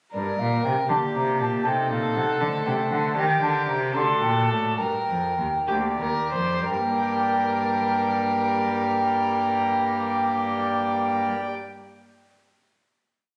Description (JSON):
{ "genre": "classical, baroque-style sonata movement with continuo", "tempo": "59-80 BPM (dotted quarters)", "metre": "6/8", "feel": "straight", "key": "G minor", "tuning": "A4 = 441 Hz", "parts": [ { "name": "mellow baroque flute", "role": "melody", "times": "0.1-11.3 s", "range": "D5 to C6", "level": "-28 LUFS", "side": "equal", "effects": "none" }, { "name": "dark violin", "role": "second line", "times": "0.1-11.3 s", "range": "G4 to C5", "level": "-31 LUFS", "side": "equal", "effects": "none" }, { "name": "pipe organ, foundations", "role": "accompaniment", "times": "0.1-11.5 s", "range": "D2 to G5", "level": "-30 LUFS", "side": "equal", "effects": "none" }, { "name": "warm cello", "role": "bass", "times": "0.1-11.3 s", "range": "D2 to Eb3", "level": "-31 LUFS", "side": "equal", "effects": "none" } ], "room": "moderate recital hall reverb, RT60 1.5 s", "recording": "recorded on a phone in the room, studio reverb", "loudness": "-24 LUFS", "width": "mono", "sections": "0.1-6.7 A section; 6.7-10.7 final chord", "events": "slowing down 2.4-6.7", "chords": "0.1 Gm; 1.7 Cm; 2.4 D5; 3.2 Eb; 4.0 D; 4.8 Gm" }